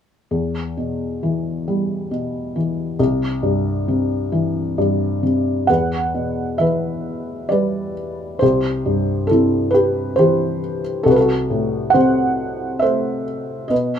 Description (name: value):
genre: classical, lyrical solo piano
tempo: 68 BPM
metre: 3/4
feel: rubato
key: E minor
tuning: A4 = 440 Hz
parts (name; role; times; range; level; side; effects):
- felt-muted upright piano; solo; 0.3-14.0 s; C2 to F#5; -17 LUFS; equal; none
room: moderate studio reverb, RT60 0.6 s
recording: minimal, uncompressed stereo recording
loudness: -17 LUFS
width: side -8 dB against mid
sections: 0.3-5.7 A section; 5.7-14.0 B section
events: none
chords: 0.3 Em; 3.0 C; 5.7 Em; 8.4 C; 11.1 F#dim/C